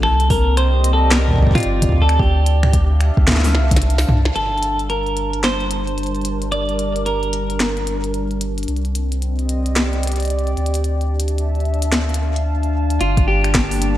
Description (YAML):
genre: IDM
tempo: 111 BPM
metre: 4/4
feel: swing 62% on 16ths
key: G minor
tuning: A4 = 439 Hz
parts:
  - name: clean electric guitar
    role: melody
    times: 0.0-8.4, 13.0-14.0 s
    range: F4 to D5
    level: -22 LUFS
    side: right 1 dB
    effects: wide subtle chorus, digital delay
  - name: warbly tape-like pad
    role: sustained chords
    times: 0.0-14.0 s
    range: G3 to A5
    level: -25 LUFS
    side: equal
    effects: chorus, built-in reverb
  - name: warm sub bass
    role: bass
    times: 0.0-14.0 s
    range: G1 to D2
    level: -18 LUFS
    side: equal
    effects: none
  - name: glitchy drum kit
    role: drums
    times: 0.0-13.9 s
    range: finger snaps, hi-hat, snare drum, toms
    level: -22 LUFS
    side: equal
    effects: small room reverb, gated reverb
  - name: electronic kick drum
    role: drums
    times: 0.3-3.8, 13.2-13.7 s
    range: none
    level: -17 LUFS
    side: equal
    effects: small room reverb
room: light reverb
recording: bright 1980s-style digital production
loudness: -15 LUFS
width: side -13 dB against mid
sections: 0.0-4.4 A section; 4.4-13.0 B section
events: drum fill 3.3-4.4; break 3.8-4.4; band accent 4.2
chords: 0.0 Cm9; 1.9 Dm11; 4.4 Gm11; 8.7 Cm9; 10.6 Dm11; 13.0 Gm9